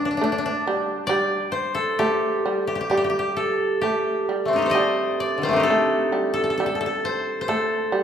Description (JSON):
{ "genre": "japanese traditional, Japanese chamber music", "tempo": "66 BPM", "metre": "2/4", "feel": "uneven beats, rubato", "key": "D in sen", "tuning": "A4 = 440 Hz", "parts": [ { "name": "koto", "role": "melody", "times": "0.0-8.0 s", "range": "D3 to Eb5", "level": "-21 LUFS", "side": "equal", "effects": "none" }, { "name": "shamisen", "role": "second line", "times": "0.0-8.0 s", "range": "G3 to A3", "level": "-26 LUFS", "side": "right 1 dB", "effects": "none" } ], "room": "wet concert hall reverb, RT60 1.8 s", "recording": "recorded in a church or concert hall", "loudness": "-20 LUFS", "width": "side -8 dB against mid", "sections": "0.0-8.0 A section", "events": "none", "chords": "none", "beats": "0.23 | 1.09 1.98 | 2.90 3.81 | 4.74 5.67 | 6.58 7.48" }